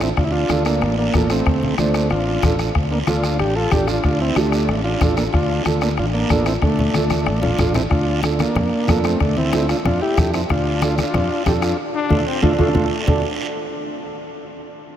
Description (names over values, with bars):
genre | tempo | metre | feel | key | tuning
latin, cumbia | 186 BPM | 4/4 | straight | D minor | A4 = 440 Hz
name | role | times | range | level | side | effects
combo organ | melody | 0.0-13.2 s | A3 to A4 | -21 LUFS | equal | none
dark upright piano | accompaniment | 0.0-13.2 s | D4 to C5 | -24 LUFS | right 5 dB | none
fingered electric bass | bass | 0.0-13.2 s | A1 to F2 | -22 LUFS | equal | none
bombo | percussion | 0.0-13.2 s | none | -23 LUFS | left 2 dB | none
guiro | percussion | 0.0-13.2 s | none | -31 LUFS | right 5 dB | none
congas | percussion | 0.2-13.2 s | none | -27 LUFS | left 2 dB | none
warm trombone | second line | 11.9-13.2 s | A3 to D4 | -27 LUFS | left 3 dB | none
room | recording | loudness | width
moderate huge ambient reverb, RT60 7.8 s | dreamy mix soaked in reverb | -16 LUFS | side -10 dB against mid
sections
0.0-7.9 A section; 7.9-13.1 B section; 13.1-14.4 C section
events
drum fill 7.1-7.9; band accent 11.8-13.1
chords
0.0 Dm; 13.1 D